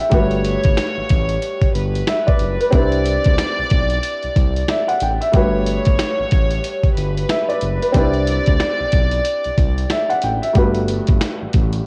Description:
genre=hip hop, boom-bap hip-hop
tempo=92 BPM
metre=4/4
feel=swing 62% on 16ths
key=C lydian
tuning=A4 = 439 Hz
part: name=warm upright piano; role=accompaniment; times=0.0-11.9 s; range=G2 to G5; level=-23 LUFS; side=equal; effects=cassette tape, high-pass filter, low-pass filter
part: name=dusty soul sampler-style drum kit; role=drums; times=0.0-11.8 s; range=hi-hat, kick drum, snare drum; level=-20 LUFS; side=equal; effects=cassette tape
part: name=warm studio violin section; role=melody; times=0.1-10.1 s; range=B4 to D5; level=-26 LUFS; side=equal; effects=high-pass filter, low-pass filter, tape echo
part: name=smooth gliding synth bass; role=bass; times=0.1-11.8 s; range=F#1 to D2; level=-24 LUFS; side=equal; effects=none
room=digital ambience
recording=home recording on cassette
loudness=-18 LUFS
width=mono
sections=0.0-11.9 A section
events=none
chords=0.1 Gmaj9; 2.7 Cmaj9; 5.3 Gmaj9; 7.9 Cmaj9; 10.6 Gmaj9

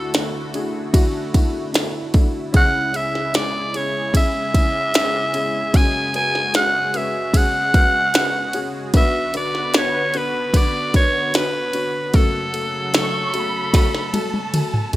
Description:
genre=pop ballad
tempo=75 BPM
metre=4/4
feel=straight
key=F# minor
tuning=A4 = 440 Hz
part: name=raspy alto saxophone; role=melody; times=0.0-14.9 s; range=A4 to G#5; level=-20 LUFS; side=equal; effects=none
part: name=felt-muted upright piano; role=accompaniment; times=0.0-15.0 s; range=F#1 to C#5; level=-26 LUFS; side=left 2 dB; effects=none
part: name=warm analog pad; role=sustained chords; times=0.0-15.0 s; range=C#3 to B4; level=-29 LUFS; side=equal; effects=chorus
part: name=glitchy drum kit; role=drums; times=0.1-15.0 s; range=kick drum, ride cymbal, snare drum, toms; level=-18 LUFS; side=equal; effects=none
part: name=dark studio violin section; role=second line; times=12.9-15.0 s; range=A5 to C#6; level=-27 LUFS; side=right 2 dB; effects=digital delay
room=studio reverb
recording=rough home demo mix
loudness=-17 LUFS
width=side -16 dB against mid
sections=0.0-15.0 A section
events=drum fill 13.7-15.0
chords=0.0 Dadd9; 2.5 C#m; 5.7 F#sus2; 8.9 Bm; 12.1 F#m

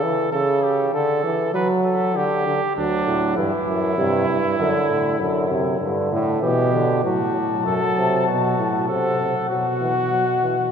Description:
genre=classical, imitative canzona for brass ensemble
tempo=98 BPM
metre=4/4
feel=straight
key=G major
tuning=A4 = 441 Hz
part: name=mellow trumpet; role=second line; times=0.0-10.7 s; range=D4 to B4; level=-24 LUFS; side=right 3 dB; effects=none
part: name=warm euphonium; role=accompaniment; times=0.0-10.6 s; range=C3 to F#3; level=-22 LUFS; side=equal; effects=none
part: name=warm bass trombone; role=bass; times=2.8-10.7 s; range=D2 to C3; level=-23 LUFS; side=right 1 dB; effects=none
part: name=dark cornet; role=melody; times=7.1-10.7 s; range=F#5 to A5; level=-24 LUFS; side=left 10 dB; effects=none
room=wet church reverb, RT60 3.6 s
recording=minimal, uncompressed stereo recording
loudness=-18 LUFS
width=side -7 dB against mid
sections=0.0-7.0 A section; 7.0-10.7 B section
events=none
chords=0.0 A; 0.9 D; 2.2 G5/D; 3.4 C; 4.6 D/F#; 5.8 G; 7.0 F#dim; 9.5 Bsus4

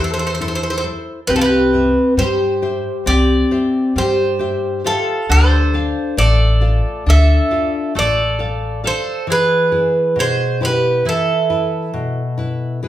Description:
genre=greek folk, Greek bouzouki band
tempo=135 BPM (eighths)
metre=9/8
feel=straight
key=unclear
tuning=A4 = 440 Hz
part: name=Greek bouzouki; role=melody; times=0.0-12.8 s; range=A4 to E5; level=-19 LUFS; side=right 2 dB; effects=none
part: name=mandolin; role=second line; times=0.0-12.8 s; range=E4 to A4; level=-22 LUFS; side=right 2 dB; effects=none
part: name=nylon-string guitar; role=accompaniment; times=0.0-12.9 s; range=B2 to F5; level=-20 LUFS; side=left 3 dB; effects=none
part: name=upright bass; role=bass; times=0.0-8.9 s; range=A1 to G2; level=-17 LUFS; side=equal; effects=none
room=wet large studio reverb, RT60 0.8 s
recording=band playing live in one room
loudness=-14 LUFS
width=side -13 dB against mid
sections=0.0-12.9 A section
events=none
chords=0.0 Am; 1.3 C; 5.3 Dm; 9.3 E

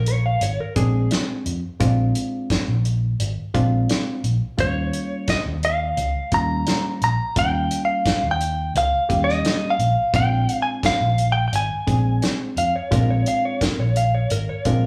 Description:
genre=straight-eighth soul blues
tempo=86 BPM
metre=4/4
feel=straight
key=unclear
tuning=A4 = 440 Hz
part: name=electric slide guitar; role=second line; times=0.0-1.1, 12.6-14.9 s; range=Ab4 to F5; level=-26 LUFS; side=equal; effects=none
part: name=vintage muted fingered electric bass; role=bass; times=0.0-14.9 s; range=Ab1 to F2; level=-24 LUFS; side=equal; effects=none
part: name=warm soul drum kit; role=drums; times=0.1-14.8 s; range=hi-hat, kick drum, snare drum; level=-27 LUFS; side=equal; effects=none
part: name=barky reed electric piano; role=accompaniment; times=0.8-14.9 s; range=G3 to Ab4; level=-28 LUFS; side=equal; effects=overdrive
part: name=direct-recorded clean electric guitar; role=melody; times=4.6-14.3 s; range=Db5 to Bb5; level=-24 LUFS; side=equal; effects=none
room=moderate stone room reverb, RT60 1.4 s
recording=band playing live in one room, studio ambience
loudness=-21 LUFS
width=mono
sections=0.0-14.9 A section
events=none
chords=0.0 Bb9; 4.6 Eb9; 10.1 Bb9

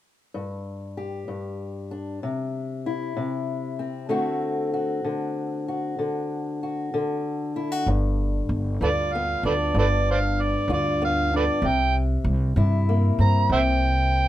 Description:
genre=acoustic country blues, solo or duo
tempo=64 BPM (dotted quarters)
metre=12/8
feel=straight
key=G mixolydian from 7.9 s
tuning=A4 = 440 Hz
part: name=fingerpicked old ladder-braced acoustic guitar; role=accompaniment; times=0.3-14.3 s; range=G2 to G4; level=-26 LUFS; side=left 2 dB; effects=none
part: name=upright bass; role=bass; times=7.9-14.3 s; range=G1 to G2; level=-23 LUFS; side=equal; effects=none
part: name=overdriven harmonica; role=melody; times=8.8-14.3 s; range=A4 to Bb5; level=-23 LUFS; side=right 3 dB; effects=none
room=light reverb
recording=minimal, uncompressed stereo recording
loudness=-22 LUFS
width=side -13 dB against mid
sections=0.3-7.9 A section; 7.9-14.3 B section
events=none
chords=0.3 G5; 2.2 C; 4.1 D7; 7.9 G7; 11.6 C7

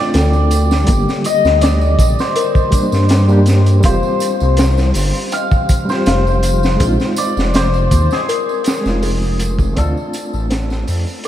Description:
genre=trip hop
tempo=81 BPM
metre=4/4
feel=straight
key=F dorian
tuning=A4 = 440 Hz
part: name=cimbalom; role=melody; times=0.0-11.3 s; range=Ab4 to G5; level=-20 LUFS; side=left 2 dB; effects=tape echo
part: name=reed electric piano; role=accompaniment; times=0.0-11.3 s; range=D3 to C5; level=-21 LUFS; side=right 1 dB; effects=fast tremolo, tape echo
part: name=music box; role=arpeggios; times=0.1-11.3 s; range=Ab4 to G5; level=-25 LUFS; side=left 3 dB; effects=tape echo
part: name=dark detuned saw bass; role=bass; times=0.1-11.1 s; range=F1 to G2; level=-14 LUFS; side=equal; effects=none
part: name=crunchy breakbeat drum kit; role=drums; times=0.1-11.3 s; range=hi-hat, kick drum, snare drum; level=-18 LUFS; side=equal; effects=none
part: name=tambourine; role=percussion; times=0.1-11.3 s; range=none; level=-32 LUFS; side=right 5 dB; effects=none
room=moderate huge ambient reverb, RT60 7.5 s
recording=dreamy mix soaked in reverb, vinyl crackle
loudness=-12 LUFS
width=side -11 dB against mid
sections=0.0-11.3 A section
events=fade-out 7.8-11.3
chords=0.0 Dm7; 0.9 Gm; 3.8 Fsus2; 6.8 Bb7sus4; 9.8 Dm7

